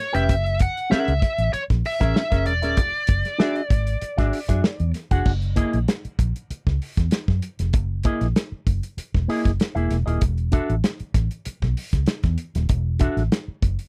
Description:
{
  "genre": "funk",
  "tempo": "97 BPM",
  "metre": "4/4",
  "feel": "straight",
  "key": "F# mixolydian",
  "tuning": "A4 = 440 Hz",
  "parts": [
    { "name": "biting lead guitar", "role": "melody", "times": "0.0-4.9 s", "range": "C#5 to F#5", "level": "-28 LUFS", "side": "equal", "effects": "overdrive" },
    { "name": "electric guitar with an envelope filter", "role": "accompaniment", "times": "0.1-13.2 s", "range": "A#3 to G5", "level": "-27 LUFS", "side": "equal", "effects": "none" },
    { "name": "vintage muted fingered electric bass", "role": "bass", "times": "0.1-13.8 s", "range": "D#1 to F#2", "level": "-26 LUFS", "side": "equal", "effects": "none" },
    { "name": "warm soul drum kit", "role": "drums", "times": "0.1-13.9 s", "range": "crash cymbal, hi-hat, kick drum, snare drum", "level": "-24 LUFS", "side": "equal", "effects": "none" }
  ],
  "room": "little or no reverb",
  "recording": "dry, close 1970s-style studio recording",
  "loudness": "-23 LUFS",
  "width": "mono",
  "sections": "0.0-5.3 A section; 5.3-13.9 B section",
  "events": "none",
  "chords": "0.3 F#9; 2.8 E9; 5.3 F#13; 10.2 E9sus4"
}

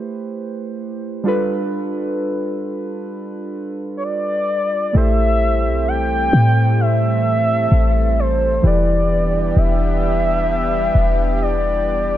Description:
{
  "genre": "contemporary R&B",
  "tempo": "65 BPM",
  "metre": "4/4",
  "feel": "swing 58% on 16ths",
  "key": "A minor",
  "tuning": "A4 = 444 Hz",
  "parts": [
    { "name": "muted felt-like synth keys", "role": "accompaniment", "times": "0.0-12.2 s", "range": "E3 to D5", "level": "-23 LUFS", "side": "right 2 dB", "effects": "chorus, low-pass filter" },
    { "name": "gliding portamento lead", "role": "melody", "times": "4.0-12.2 s", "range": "C5 to G5", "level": "-19 LUFS", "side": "equal", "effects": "chorus, low-pass filter" },
    { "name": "lush unison pad", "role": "sustained chords", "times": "4.9-12.2 s", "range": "E3 to A4", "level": "-25 LUFS", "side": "left 1 dB", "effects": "chorus" },
    { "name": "clean 808-style bass", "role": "bass", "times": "4.9-12.2 s", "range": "E1 to A2", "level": "-18 LUFS", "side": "equal", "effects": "none" }
  ],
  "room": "light reverb, digital ambience",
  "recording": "none",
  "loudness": "-15 LUFS",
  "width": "side -12 dB against mid",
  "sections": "0.0-4.9 A section; 4.9-12.2 B section",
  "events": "filter sweep 0.0-4.9",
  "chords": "0.0 Am9; 1.3 G9; 4.9 Am7; 8.6 Em7"
}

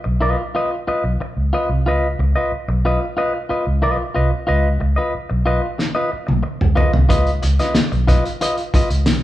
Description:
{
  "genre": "funk",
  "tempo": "92 BPM",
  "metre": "4/4",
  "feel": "straight",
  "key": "unclear",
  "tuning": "A4 = 440 Hz",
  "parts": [
    { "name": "clean electric guitar", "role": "accompaniment", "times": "0.0-9.1 s", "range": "F4 to Eb5", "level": "-20 LUFS", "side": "left 1 dB", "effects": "none" },
    { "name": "vintage muted fingered electric bass", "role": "bass", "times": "0.1-9.2 s", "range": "Cb2 to Db2", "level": "-19 LUFS", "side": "equal", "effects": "none" },
    { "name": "cloth-damped thuddy drum kit", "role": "drums", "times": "5.8-9.2 s", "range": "hi-hat, kick drum, snare drum, toms", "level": "-18 LUFS", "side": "equal", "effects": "none" }
  ],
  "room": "moderate large studio reverb, RT60 1.2 s",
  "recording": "band playing live in one room",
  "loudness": "-16 LUFS",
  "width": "side -14 dB against mid",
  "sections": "0.0-9.2 A section",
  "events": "drum fill 5.8-7.1",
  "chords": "0.0 Db9"
}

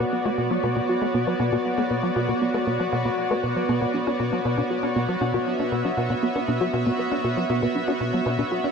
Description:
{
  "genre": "ambient, sequencer-driven space music",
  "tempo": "118 BPM",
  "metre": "4/4",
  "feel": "straight",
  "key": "B minor",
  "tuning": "A4 = 437 Hz",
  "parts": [
    { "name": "lush unison pad", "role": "sustained chords", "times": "0.0-8.7 s", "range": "B3 to E5", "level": "-24 LUFS", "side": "equal", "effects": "chorus" },
    { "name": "soft round pluck", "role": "arpeggios", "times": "0.0-8.6 s", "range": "B3 to B5", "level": "-28 LUFS", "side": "left 1 dB", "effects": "chorus, auto-pan, tape echo" },
    { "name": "tight sequencer bass", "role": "riff", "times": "0.0-8.7 s", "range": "B2 to D4", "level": "-27 LUFS", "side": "equal", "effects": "lush chorus, tape echo" }
  ],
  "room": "wet huge ambient reverb, RT60 6.9 s",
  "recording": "in a vast, echoing space",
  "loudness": "-21 LUFS",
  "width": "side -6 dB against mid",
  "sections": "0.0-8.7 A section",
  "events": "none",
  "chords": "0.0 Bm"
}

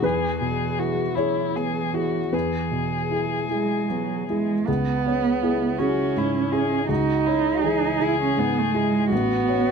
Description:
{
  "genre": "neoclassical piano and strings",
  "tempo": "53 BPM (dotted quarters)",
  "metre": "6/8",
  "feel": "uneven beats, rubato",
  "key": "C# minor",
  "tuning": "A4 = 441 Hz",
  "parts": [
    { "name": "muted violin", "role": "melody", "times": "0.0-9.7 s", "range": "E4 to G#4", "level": "-27 LUFS", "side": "left 6 dB", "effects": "none" },
    { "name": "muted cello", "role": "second line", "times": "0.0-9.7 s", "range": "E3 to E4", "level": "-24 LUFS", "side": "right 6 dB", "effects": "none" },
    { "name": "dark grand piano", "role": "accompaniment", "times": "0.0-9.7 s", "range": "A1 to C#5", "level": "-24 LUFS", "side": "left 1 dB", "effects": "none" }
  ],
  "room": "light reverb",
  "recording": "none",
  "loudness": "-21 LUFS",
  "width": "side -6 dB against mid",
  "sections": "0.0-4.7 A section; 4.7-9.7 A section",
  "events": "none",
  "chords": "0.0 E; 4.7 C#m; 9.1 A"
}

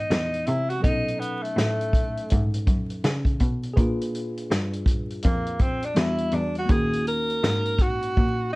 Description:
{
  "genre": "hip hop, jazz-hop",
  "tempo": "82 BPM",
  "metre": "4/4",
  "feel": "swing 63% on 16ths",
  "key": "unclear",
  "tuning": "A4 = 440 Hz",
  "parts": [
    { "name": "breathy tenor saxophone", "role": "melody", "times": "0.0-8.6 s", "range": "A3 to A#4", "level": "-27 LUFS", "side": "equal", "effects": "none" },
    { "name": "tine electric piano", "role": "accompaniment", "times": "0.0-8.6 s", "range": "E3 to B4", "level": "-32 LUFS", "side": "equal", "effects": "medium stereo tremolo" },
    { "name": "rich cello", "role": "bass", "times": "0.0-8.6 s", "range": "D#2 to C#3", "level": "-28 LUFS", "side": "equal", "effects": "none" },
    { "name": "vintage drum kit", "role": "drums", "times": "0.1-8.4 s", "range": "hi-hat, kick drum, snare drum", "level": "-24 LUFS", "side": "equal", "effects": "vintage 12-bit sampler grit" }
  ],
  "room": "light reverb",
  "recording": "worn, warbling old tape, cassette tape, vinyl crackle, warbly pitch drift",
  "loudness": "-22 LUFS",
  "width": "side -23 dB against mid",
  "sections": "0.0-8.6 A section",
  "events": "tenor saxophone solo 0.0-8.6; drum fill 8.2-8.6",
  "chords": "0.0 C#m7 (rootless); 0.8 B9; 3.8 A#7b9; 6.0 Em7; 6.7 D#m7"
}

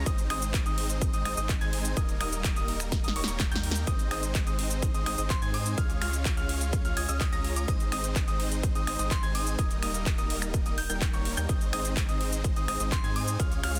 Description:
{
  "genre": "EDM, festival progressive house",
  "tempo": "126 BPM",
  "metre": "4/4",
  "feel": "straight",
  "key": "Ab major",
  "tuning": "A4 = 440 Hz",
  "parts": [
    { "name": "warm baby grand piano", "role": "arpeggios", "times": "0.0-13.8 s", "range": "Db6 to Bb6", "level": "-38 LUFS", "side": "equal", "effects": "sidechain pumping, delay" },
    { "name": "supersaw chords", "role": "riff", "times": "0.0-13.8 s", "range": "G3 to Bb5", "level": "-38 LUFS", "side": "equal", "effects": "sidechain pumping, delay" },
    { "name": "saturated sub bass", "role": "bass", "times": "0.0-13.8 s", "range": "Eb1 to Ab2", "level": "-36 LUFS", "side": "equal", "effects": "tube saturation, sidechain pumping" },
    { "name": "big-room dance drum kit", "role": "drums", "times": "0.1-13.8 s", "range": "finger snaps, handclaps, hi-hat, shaker, snare drum", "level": "-36 LUFS", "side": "equal", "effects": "soft clipping on snare" },
    { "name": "electronic kick drum", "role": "drums", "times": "0.1-13.5 s", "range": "none", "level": "-31 LUFS", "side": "equal", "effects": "overdrive" },
    { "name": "glassy synth bell", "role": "melody", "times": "5.3-13.3 s", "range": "C6 to Ab6", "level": "-40 LUFS", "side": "equal", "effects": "chorus, delay" }
  ],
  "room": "little or no reverb",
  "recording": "dense, heavily limited modern master",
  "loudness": "-29 LUFS",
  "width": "mono",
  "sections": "0.0-13.8 A section",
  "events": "drum fill 2.9-3.9",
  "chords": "0.1 Ab; 2.0 Eb; 3.9 Ab; 5.8 Db; 7.7 Ab; 9.6 Eb; 11.5 Ab"
}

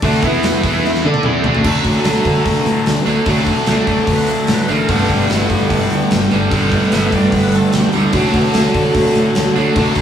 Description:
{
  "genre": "classic rock",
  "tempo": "148 BPM",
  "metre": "4/4",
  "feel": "straight",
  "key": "unclear",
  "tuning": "A4 = 440 Hz",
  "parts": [
    { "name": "dark upright piano", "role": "accompaniment", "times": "0.0-1.5, 8.1-10.0 s", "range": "D4 to E5", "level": "-22 LUFS", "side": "left 2 dB", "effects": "none" },
    { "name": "tonewheel organ", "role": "sustained chords", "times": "0.0-9.7 s", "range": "F#3 to E5", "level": "-21 LUFS", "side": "equal", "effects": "overdrive, fast rotary speaker" },
    { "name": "distorted electric guitar", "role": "riff", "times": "0.0-10.0 s", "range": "G2 to D5", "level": "-19 LUFS", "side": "left 6 dB", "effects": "overdrive" },
    { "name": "overdriven semi-hollow guitar", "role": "riff", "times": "0.0-10.0 s", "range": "G2 to D5", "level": "-18 LUFS", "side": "right 5 dB", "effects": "none" },
    { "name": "fuzz fingered electric bass", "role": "bass", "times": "0.0-10.0 s", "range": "G1 to D3", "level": "-20 LUFS", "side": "equal", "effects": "overdrive" },
    { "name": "gated 80s drum kit", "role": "drums", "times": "0.0-10.0 s", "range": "crash cymbal, hi-hat, kick drum, snare drum, toms", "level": "-20 LUFS", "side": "equal", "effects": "none" }
  ],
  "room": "moderate stone room reverb, RT60 1.1 s",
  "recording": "band playing live in one room, small room ambience",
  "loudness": "-12 LUFS",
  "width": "side -9 dB against mid",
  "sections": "0.0-1.6 A section; 1.6-10.0 B section",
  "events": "drum fill 0.8-1.6",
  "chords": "0.2 E5; 1.0 D5; 1.6 D; 4.9 Gadd9; 8.1 D"
}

